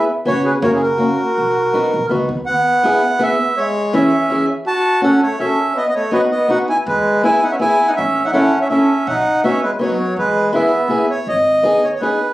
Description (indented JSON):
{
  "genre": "alpine folk, alpine dance band",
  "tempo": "164 BPM",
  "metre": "3/4",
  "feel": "straight",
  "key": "E major",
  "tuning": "A4 = 439 Hz",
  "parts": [
    { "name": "accordion", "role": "melody", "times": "0.0-12.3 s", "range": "G#4 to A5", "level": "-17 LUFS", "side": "right 1 dB", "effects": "none" },
    { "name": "mellow trumpet", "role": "second line", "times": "0.0-11.1 s", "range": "F#3 to A#4", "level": "-20 LUFS", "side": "right 1 dB", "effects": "none" },
    { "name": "fingerpicked acoustic archtop guitar", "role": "accompaniment", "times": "0.0-12.2 s", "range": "E3 to A4", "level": "-16 LUFS", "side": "left 1 dB", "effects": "none" },
    { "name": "upright bass", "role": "bass", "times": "0.3-2.5, 6.9-11.7 s", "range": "F#1 to E2", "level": "-28 LUFS", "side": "equal", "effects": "none" }
  ],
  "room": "light reverb",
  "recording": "recorded on a phone in the room, club reverb, compression",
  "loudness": "-13 LUFS",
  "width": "side -16 dB against mid",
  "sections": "0.0-2.5 A section; 2.5-11.3 B section; 11.3-12.3 C section",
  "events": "none",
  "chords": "0.3 F#sus4; 0.6 F#; 1.4 B; 2.5 E; 3.6 C#m; 4.7 F#m; 5.8 B; 6.9 E; 8.0 A; 9.1 Badd9; 10.2 E; 11.3 G#m"
}